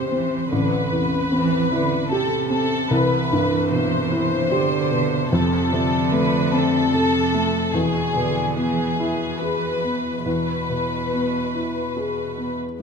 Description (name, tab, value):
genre	neoclassical piano and strings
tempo	69-75 BPM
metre	3/4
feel	rubato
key	unclear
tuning	A4 = 441 Hz
part	warm studio violin section	melody	0.0-12.6 s	G#4 to C5	-24 LUFS	left 3 dB	none
part	dark cello	second line	0.0-12.6 s	B2 to E3	-26 LUFS	right 10 dB	none
part	felt-muted upright piano	accompaniment	0.0-12.8 s	A1 to A4	-22 LUFS	left 1 dB	none
room	moderate recital hall reverb, RT60 1.7 s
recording	minimal, uncompressed stereo recording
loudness	-19 LUFS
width	side -6 dB against mid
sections	0.0-12.8 A section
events	none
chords	0.0 Am7; 2.9 Cmaj7; 5.3 F; 7.7 E